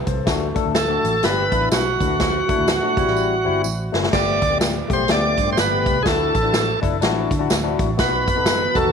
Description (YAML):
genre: uptempo 1960s-style soul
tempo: 124 BPM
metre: 4/4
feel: swing 60% on 8ths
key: unclear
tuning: A4 = 444 Hz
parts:
  - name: barky tine electric piano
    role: accompaniment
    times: 0.0-8.9 s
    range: G3 to C5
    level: -24 LUFS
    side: left 11 dB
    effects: overdrive, analog chorus
  - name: vintage muted fingered electric bass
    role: bass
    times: 0.1-8.9 s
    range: E1 to D3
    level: -26 LUFS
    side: right 1 dB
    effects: none
  - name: swinging big-band drum kit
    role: drums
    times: 0.1-8.8 s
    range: crash cymbal, hi-hat, kick drum, snare drum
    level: -22 LUFS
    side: right 1 dB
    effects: none
  - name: tambourine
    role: percussion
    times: 0.3-8.6 s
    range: none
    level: -33 LUFS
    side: right 18 dB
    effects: none
  - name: overdriven tonewheel organ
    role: melody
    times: 0.8-8.9 s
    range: F#4 to D5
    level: -21 LUFS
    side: right 2 dB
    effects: slow rotary speaker, tape echo
  - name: granular cloud pad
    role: sustained chords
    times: 8.3-8.9 s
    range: D#3 to F#4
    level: -28 LUFS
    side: right 4 dB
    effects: built-in reverb
room: wet spring reverb, RT60 2.1 s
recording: 1960s-style stereo with parts hard left and right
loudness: -17 LUFS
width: side -6 dB against mid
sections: 0.0-4.1 A section; 4.1-8.9 B section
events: drum fill 3.2-4.1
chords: 0.3 D; 1.2 G; 2.0 D; 2.9 C; 3.6 A; 4.1 Gadd9; 6.1 Dadd9; 8.0 B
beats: | 0.27 0.75 1.23 1.72 | 2.20 2.68 3.17 3.65 | 4.13 4.62 5.10 5.58 | 6.06 6.54 7.02 7.50 | 7.99 8.47